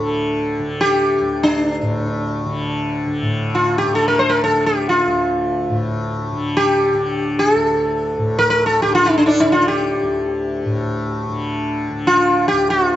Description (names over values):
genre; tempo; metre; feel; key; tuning
indian classical, Hindustani; free time; none; none; unclear; A4 = 439 Hz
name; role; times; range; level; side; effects
sitar; melody; 0.0-13.0 s; D4 to C5; -16 LUFS; equal; none
tanpura; drone; 0.0-13.0 s; D2 to D3; -21 LUFS; left 1 dB; none
room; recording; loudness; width
moderate recital hall reverb, RT60 1.4 s; dark, warm production, nothing above 7.8 kHz; -15 LUFS; side -12 dB against mid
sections
0.0-3.2 A section; 3.2-13.0 A section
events
none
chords
none